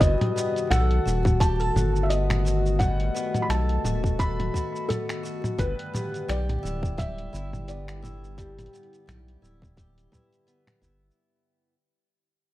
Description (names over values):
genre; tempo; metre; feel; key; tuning
folktronica; 86 BPM; 4/4; swing 56% on 16ths; unclear; A4 = 440 Hz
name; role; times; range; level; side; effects
felt-muted upright piano; melody; 0.0-10.4 s; G4 to B5; -31 LUFS; equal; tape echo
vibraphone with medium mallets; second line; 0.0-11.2 s; F#4 to G5; -33 LUFS; left 6 dB; tape echo
warbly tape-like pad; sustained chords; 0.0-11.2 s; D3 to E4; -38 LUFS; left 1 dB; chorus, built-in reverb
picked twelve-string acoustic guitar; arpeggios; 0.0-11.7 s; G2 to B4; -35 LUFS; right 1 dB; none
round analog bass; bass; 0.0-11.1 s; D1 to B1; -26 LUFS; equal; tube saturation
electronic kick drum; drums; 0.0-11.0 s; none; -24 LUFS; equal; none
lo-fi sampler-style drum kit; drums; 0.0-11.2 s; cabasa, finger snaps, hi-hat, toms; -30 LUFS; equal; none
room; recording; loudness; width
digital ambience; dry, close 1970s-style studio recording, vinyl crackle; -23 LUFS; side -15 dB against mid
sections
0.0-11.2 A section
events
fade-out 0.0-11.2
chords
0.0 B7; 5.6 Em7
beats
| 0.01 0.70 1.40 2.10 | 2.80 3.50 4.19 4.89 | 5.59 6.29 6.98 7.68 | 8.38 9.08 9.77 10.47